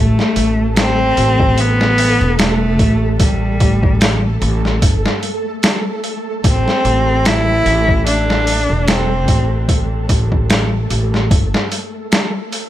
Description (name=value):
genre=trip hop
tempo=74 BPM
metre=4/4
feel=swing 56% on 16ths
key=unclear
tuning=A4 = 440 Hz
part: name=rich cello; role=melody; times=0.0-9.7 s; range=G3 to E4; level=-17 LUFS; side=equal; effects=tape echo
part: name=upright bass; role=bass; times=0.0-11.5 s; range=E1 to A1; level=-17 LUFS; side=equal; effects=none
part: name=flickering grainy texture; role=texture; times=0.0-12.7 s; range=A3 to A4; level=-25 LUFS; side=right 1 dB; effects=built-in reverb
part: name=trip hop sampler-style drum kit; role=drums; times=0.2-12.7 s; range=hi-hat, kick drum, snare drum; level=-16 LUFS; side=equal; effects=overdrive
room=digital ambience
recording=none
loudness=-12 LUFS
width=side -13 dB against mid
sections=0.0-12.7 A section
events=none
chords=0.0 Amadd9; 3.2 Gsus2; 6.4 D5/A; 9.7 N.C.